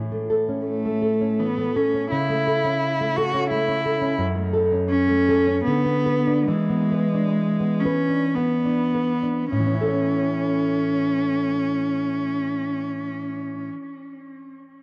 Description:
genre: romantic duo for cello and classical guitar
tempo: 49-89 BPM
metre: 3/4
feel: rubato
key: A major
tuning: A4 = 440 Hz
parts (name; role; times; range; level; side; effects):
- nylon-string guitar; accompaniment; 0.0-14.0 s; F#2 to C#5; -26 LUFS; equal; cassette tape
- rich cello; melody; 0.7-13.7 s; G#3 to F#4; -25 LUFS; equal; none
room: moderate spring reverb, RT60 2.8 s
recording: home recording on cassette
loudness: -22 LUFS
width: mono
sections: 0.0-9.5 A section; 9.5-14.8 B section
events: slowing down 3.2-9.5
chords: 0.0 A; 2.1 A/C#; 4.2 F#m; 5.7 Bm/D; 6.5 E7; 9.5 A

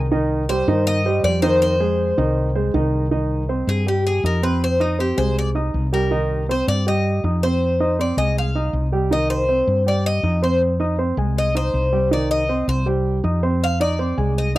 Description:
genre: latin, Cuban son and guajira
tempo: 160 BPM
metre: 4/4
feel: straight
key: C minor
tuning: A4 = 436 Hz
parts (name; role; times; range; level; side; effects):
- dark concert grand piano; arpeggios; 0.0-14.6 s; Eb3 to Eb6; -22 LUFS; right 2 dB; none
- woody fretless electric bass; bass; 0.0-14.6 s; C2 to G2; -21 LUFS; left 1 dB; none
- Cuban tres; melody; 0.5-14.6 s; Eb4 to F5; -22 LUFS; left 1 dB; none
room: light reverb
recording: dry, close 1970s-style studio recording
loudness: -17 LUFS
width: side -17 dB against mid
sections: 0.0-3.1 A section; 3.1-14.6 B section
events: Cuban tres solo 3.1-14.6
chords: 0.1 Cm; 1.6 Fm7; 3.1 Cm; 4.6 Fm7; 6.1 Cm; 7.6 Fm7; 9.1 Cm; 10.6 Fm7; 12.1 Cm; 13.6 Fm7

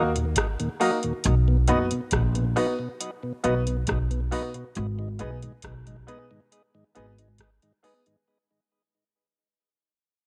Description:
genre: roots reggae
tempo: 68 BPM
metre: 4/4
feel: straight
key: unclear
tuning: A4 = 440 Hz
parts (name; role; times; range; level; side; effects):
- tonewheel organ; accompaniment; 0.0-8.2 s; Eb2 to Eb4; -33 LUFS; equal; stopped rotary speaker, tape echo
- clear upright piano; stabs; 0.0-8.1 s; Bb3 to B4; -31 LUFS; equal; none
- upright bass; bass; 0.0-7.4 s; F#1 to Eb2; -27 LUFS; equal; none
- booming analog drum machine; drums; 0.2-8.3 s; hi-hat, kick drum, rim click; -31 LUFS; equal; none
room: small room ambience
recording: none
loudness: -26 LUFS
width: mono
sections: 0.0-8.3 A section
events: fade-out 0.0-8.3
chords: 0.0 Ebm; 1.2 B; 4.8 Abm

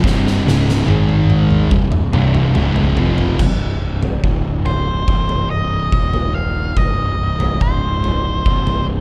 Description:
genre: stoner and doom metal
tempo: 71 BPM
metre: 4/4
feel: straight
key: C minor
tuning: A4 = 440 Hz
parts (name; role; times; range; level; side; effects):
- crunchy overdriven guitar; riff; 0.0-3.4 s; C2 to Ab3; -26 LUFS; equal; none
- thick fuzz guitar; riff; 0.0-3.4 s; C2 to Ab3; -22 LUFS; equal; distortion
- thick fuzz guitar; riff; 0.0-3.4 s; C2 to Ab3; -21 LUFS; equal; distortion
- fuzz fingered electric bass; bass; 0.0-9.0 s; C1 to Ab1; -22 LUFS; equal; overdrive
- oversized low-tuned drum kit; drums; 0.0-8.9 s; crash cymbal, kick drum, snare drum, toms; -21 LUFS; equal; none
- octave-fuzz lead guitar; melody; 4.7-8.8 s; C5 to F5; -24 LUFS; equal; distortion, tape echo
room: little or no reverb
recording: dark, warm production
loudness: -16 LUFS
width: mono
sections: 0.0-3.4 A section; 3.4-9.0 B section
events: drum fill 0.0-3.4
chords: 0.0 C5; 0.9 Ab5; 1.7 C5; 3.4 N.C.; 5.1 Cm; 5.9 Ebsus2; 6.8 Cm; 7.6 N.C.

